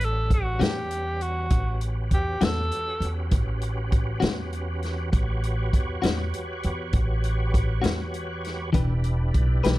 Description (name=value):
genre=slow blues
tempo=66 BPM (dotted quarters)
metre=12/8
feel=straight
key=A mixolydian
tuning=A4 = 440 Hz
part: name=bright tenor saxophone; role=melody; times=0.0-3.1 s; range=F#4 to A4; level=-29 LUFS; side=equal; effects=plate reverb
part: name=overdriven tonewheel organ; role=sustained chords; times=0.0-9.8 s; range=G3 to F#5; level=-35 LUFS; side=right 1 dB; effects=slow rotary speaker, chorus vibrato
part: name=upright bass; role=bass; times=0.0-9.8 s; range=E1 to E2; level=-26 LUFS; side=equal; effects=none
part: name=vintage drum kit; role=drums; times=0.0-9.8 s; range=hi-hat, kick drum, snare drum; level=-25 LUFS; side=equal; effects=none
part: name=clean electric guitar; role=accompaniment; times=0.6-9.8 s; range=A2 to B4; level=-27 LUFS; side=left 5 dB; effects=tremolo
room=little or no reverb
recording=dark, warm production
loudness=-23 LUFS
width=side -17 dB against mid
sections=0.0-9.8 A section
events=none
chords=0.0 A13; 8.7 Em7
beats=0.61 | 1.51 2.41 3.32 4.22 | 5.12 6.03 6.93 7.84 | 8.74 9.64